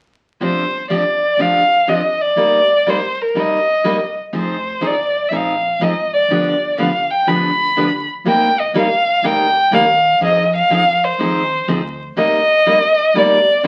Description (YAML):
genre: acoustic string swing (jazz manouche)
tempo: 122 BPM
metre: 4/4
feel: swing 65% on 8ths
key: C minor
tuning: A4 = 440 Hz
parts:
  - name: rich violin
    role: melody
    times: 0.4-13.7 s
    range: Bb4 to B5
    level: -17 LUFS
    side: equal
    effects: none
  - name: picked steel-string acoustic guitar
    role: accompaniment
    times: 0.4-13.7 s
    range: C3 to Ab4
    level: -22 LUFS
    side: equal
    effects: none
  - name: upright bass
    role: bass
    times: 0.4-13.7 s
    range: F1 to F2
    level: -34 LUFS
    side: equal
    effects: none
room: wet studio reverb, RT60 0.6 s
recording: very old 78 rpm record, vinyl crackle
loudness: -16 LUFS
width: mono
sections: 0.4-8.3 A section; 8.3-13.7 B section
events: none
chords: 0.4 G7sus4; 2.4 Cm7/G; 4.3 Fm7; 6.3 G7; 8.3 Cm7; 10.2 Fm7; 12.2 Cm7